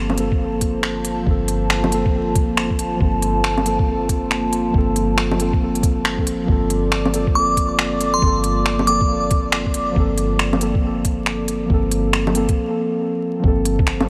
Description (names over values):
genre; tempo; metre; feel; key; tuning
future garage; 138 BPM; 4/4; swing 63% on 16ths; G minor; A4 = 440 Hz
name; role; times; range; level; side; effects
muted felt-like synth keys; accompaniment; 0.0-14.1 s; F3 to A4; -24 LUFS; equal; chorus, sidechain pumping, delay
warbly tape-like pad; sustained chords; 0.0-14.1 s; Bb3 to D6; -29 LUFS; equal; chorus, built-in reverb, sidechain pumping
soft 808-style bass; bass; 0.0-14.1 s; G1; -27 LUFS; equal; sidechain pumping
organic electronic drum kit; drums; 0.1-14.1 s; bongos, finger snaps, hi-hat; -25 LUFS; equal; overdrive, studio reverb
electronic kick drum; drums; 0.3-13.9 s; none; -22 LUFS; equal; studio reverb
glassy synth bell; melody; 7.4-9.2 s; C6 to D6; -24 LUFS; equal; chorus, phaser, delay
room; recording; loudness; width
light reverb; vinyl crackle; -19 LUFS; mono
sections
0.0-13.4 A section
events
break 12.6-13.4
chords
0.0 Gm11